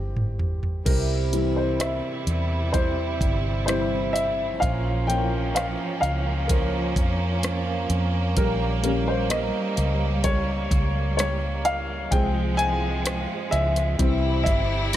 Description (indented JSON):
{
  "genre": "pop ballad",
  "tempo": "64 BPM",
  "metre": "4/4",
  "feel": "straight",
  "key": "unclear",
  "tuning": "A4 = 441 Hz",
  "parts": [
    { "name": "warm upright piano", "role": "accompaniment", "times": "0.0-15.0 s", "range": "E3 to Ab5", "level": "-27 LUFS", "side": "left 2 dB", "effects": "none" },
    { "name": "vintage muted fingered electric bass", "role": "bass", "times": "0.0-15.0 s", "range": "G1 to F2", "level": "-26 LUFS", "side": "equal", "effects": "none" },
    { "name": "smooth R&B drum kit", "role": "drums", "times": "0.2-15.0 s", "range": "crash cymbal, hi-hat, kick drum, rim click, snare drum, toms", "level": "-26 LUFS", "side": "equal", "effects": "none" },
    { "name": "clear studio string section", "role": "sustained chords", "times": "0.9-15.0 s", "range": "C3 to E4", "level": "-30 LUFS", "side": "right 2 dB", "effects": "none" },
    { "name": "fingerpicked steel-string acoustic guitar", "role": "arpeggios", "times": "0.9-15.0 s", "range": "Bb2 to Ab4", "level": "-32 LUFS", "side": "right 6 dB", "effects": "none" }
  ],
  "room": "light reverb, studio reverb",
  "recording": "none",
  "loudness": "-21 LUFS",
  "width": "side -12 dB against mid",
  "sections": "0.9-15.0 A section",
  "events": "drum fill 0.0-0.9; upright piano solo 0.9-15.0",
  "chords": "0.0 C; 4.6 Bbm; 8.4 Gdim/Bb; 12.1 Fm/C; 14.0 C"
}